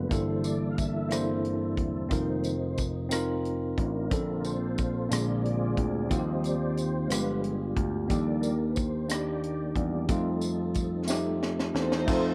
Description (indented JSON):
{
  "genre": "slow gospel",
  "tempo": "60 BPM (dotted quarters)",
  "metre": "6/8",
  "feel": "straight",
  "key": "unclear",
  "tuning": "A4 = 440 Hz",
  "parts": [
    { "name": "tine electric piano", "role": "accompaniment", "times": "0.0-12.3 s", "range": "G2 to C5", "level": "-33 LUFS", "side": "equal", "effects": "none" },
    { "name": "mellow tonewheel organ", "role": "sustained chords", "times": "0.0-12.3 s", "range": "D3 to C6", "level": "-36 LUFS", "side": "equal", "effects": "slow rotary speaker, chorus vibrato" },
    { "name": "picked electric bass", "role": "bass", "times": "0.0-12.3 s", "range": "E1 to F2", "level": "-35 LUFS", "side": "equal", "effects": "none" },
    { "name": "tight funk drum kit", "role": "drums", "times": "0.1-12.2 s", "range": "crash cymbal, hi-hat, kick drum, rim click, snare drum", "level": "-34 LUFS", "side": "equal", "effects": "none" },
    { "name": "tambourine", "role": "percussion", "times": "0.1-12.3 s", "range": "none", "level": "-42 LUFS", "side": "equal", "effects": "none" },
    { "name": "warm studio string section", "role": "melody", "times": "11.8-12.3 s", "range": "Eb4 to C5", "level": "-32 LUFS", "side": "equal", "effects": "none" }
  ],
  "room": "moderate spring reverb, RT60 2.3 s",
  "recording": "none",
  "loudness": "-29 LUFS",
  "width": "mono",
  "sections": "0.0-12.1 A section",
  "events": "tonewheel organ solo 0.0-12.1; drum fill 11.1-12.1",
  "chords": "0.1 C13/G; 2.1 F7sus4; 4.1 Bbmaj9; 5.1 Bb7; 6.1 Eb69; 7.1 G7b9; 8.1 Ebmaj7; 10.1 F7"
}